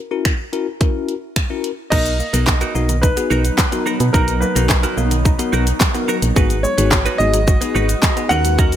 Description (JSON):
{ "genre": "dance-pop", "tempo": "108 BPM", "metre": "4/4", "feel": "straight", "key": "unclear", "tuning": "A4 = 440 Hz", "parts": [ { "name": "bell-like tine electric piano", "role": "accompaniment", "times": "0.1-8.8 s", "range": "B3 to B4", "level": "-24 LUFS", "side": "left 5 dB", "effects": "phaser, sidechain pumping" }, { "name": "pop drum kit", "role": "drums", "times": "0.3-8.8 s", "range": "crash cymbal, finger snaps, handclaps, hi-hat, kick drum, shaker, snare drum", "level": "-17 LUFS", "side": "equal", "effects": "none" }, { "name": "clear grand piano", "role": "melody", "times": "1.9-8.8 s", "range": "A#4 to F#5", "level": "-22 LUFS", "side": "equal", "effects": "none" }, { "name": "granular cloud pad", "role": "sustained chords", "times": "3.1-8.8 s", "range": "D#3 to B4", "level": "-26 LUFS", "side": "equal", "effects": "built-in reverb, sidechain pumping" }, { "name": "hollow square pluck", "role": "arpeggios", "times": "1.9-8.7 s", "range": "D#3 to F#4", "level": "-30 LUFS", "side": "right 7 dB", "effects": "none" }, { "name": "direct-recorded clean electric guitar", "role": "riff", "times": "1.9-8.8 s", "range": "C#4 to B4", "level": "-25 LUFS", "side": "right 5 dB", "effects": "wide subtle chorus" }, { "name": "solid FM bass", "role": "bass", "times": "1.9-8.8 s", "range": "G#1 to B2", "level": "-18 LUFS", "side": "equal", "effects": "sidechain pumping" } ], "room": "digital ambience", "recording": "none", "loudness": "-14 LUFS", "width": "side -10 dB against mid", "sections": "0.0-1.9 A section; 1.9-8.8 B section", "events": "none", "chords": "0.0 F#7; 1.9 Bmaj7; 6.4 G#m7" }